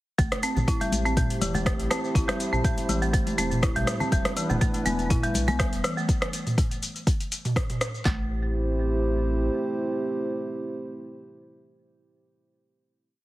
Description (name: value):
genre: afro house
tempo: 122 BPM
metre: 4/4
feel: swing 53% on 16ths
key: A minor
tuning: A4 = 440 Hz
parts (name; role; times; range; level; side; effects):
- dark analog pad; sustained chords; 0.2-12.2 s; A3 to C5; -30 LUFS; right 2 dB; chorus, sidechain pumping
- folk marimba with hard mallets; arpeggios; 0.2-8.3 s; E3 to E4; -29 LUFS; equal; sidechain pumping, tape echo
- round analog bass; bass; 0.2-9.5 s; E1 to B1; -29 LUFS; equal; tube saturation, sidechain pumping
- afro-pop drum kit; drums; 0.2-8.0 s; hi-hat, rim click, shaker, toms; -29 LUFS; equal; overdrive
- deep house drum kit; drums; 0.2-8.2 s; handclaps, kick drum, snare drum; -25 LUFS; equal; overdrive
- congas; percussion; 0.2-5.9 s; none; -32 LUFS; left 3 dB; none
room: light reverb, digital ambience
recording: heavily compressed radio sound, multiband compression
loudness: -23 LUFS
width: side -17 dB against mid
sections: 0.2-8.1 drop; 8.1-12.0 final chord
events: drop 0.2-8.1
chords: 0.2 Am7; 4.1 E7sus4; 8.1 Am7